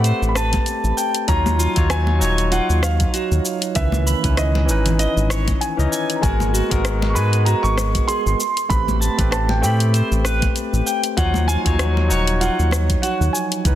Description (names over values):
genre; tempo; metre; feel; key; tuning
sunset chillout; 97 BPM; 4/4; swing 56% on 16ths; unclear; A4 = 441 Hz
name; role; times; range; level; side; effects
dark concert grand piano; melody; 0.0-13.8 s; D#5 to C#6; -25 LUFS; right 2 dB; tape echo
barky tine electric piano; accompaniment; 0.0-13.8 s; D#3 to B5; -24 LUFS; moving between left 6 dB and right 7 dB; auto-pan, digital delay
clean electric guitar; arpeggios; 0.0-13.3 s; E#4 to B5; -28 LUFS; right 2 dB; harmonic tremolo, digital delay
round analog bass; bass; 0.0-13.8 s; D#1 to A2; -18 LUFS; equal; none
smooth R&B drum kit; drums; 0.0-13.8 s; hi-hat, rim click, shaker; -26 LUFS; left 1 dB; soft clipping on snare
electronic kick drum; drums; 0.5-13.8 s; none; -21 LUFS; equal; none
congas; percussion; 0.5-12.9 s; none; -29 LUFS; left 2 dB; none
room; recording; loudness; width
light reverb, digital ambience; dense, heavily limited modern master; -16 LUFS; side -12 dB against mid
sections
0.0-13.8 A section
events
none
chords
0.0 Am9; 1.3 D#m9; 3.8 C#m9; 6.2 G#m9; 8.4 Am9; 11.2 D#m9